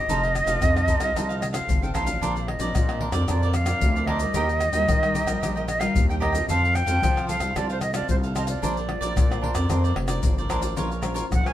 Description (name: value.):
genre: samba and choro.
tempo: 112 BPM.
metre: 4/4.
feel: straight.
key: Bb major.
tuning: A4 = 440 Hz.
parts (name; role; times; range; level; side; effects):
jazz flute; melody; 0.0-11.5 s; C5 to Ab5; -26 LUFS; right 1 dB; none.
cavaquinho; accompaniment; 0.0-11.5 s; D4 to G5; -31 LUFS; right 3 dB; none.
nylon-string guitar; accompaniment; 0.0-11.5 s; Bb2 to C5; -33 LUFS; left 2 dB; none.
growling FM bass; bass; 0.1-11.4 s; F1 to F3; -26 LUFS; equal; none.
maracas, surdo, pandeiro and tamborim; percussion; 0.1-11.5 s; none; -26 LUFS; left 1 dB; none.
room: moderate studio reverb, RT60 0.8 s.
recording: band playing live in one room.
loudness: -21 LUFS.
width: side -12 dB against mid.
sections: 0.0-10.8 A section.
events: none.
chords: 0.1 F7; 2.2 Bbadd9; 4.3 Eb; 6.5 F; 8.6 Bbadd9; 10.8 Bbmadd9.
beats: | 0.07 0.61 1.14 1.68 | 2.21 2.75 3.28 3.82 | 4.35 4.88 5.42 5.95 | 6.49 7.02 7.56 8.09 | 8.63 9.16 9.70 10.23 | 10.77 11.30.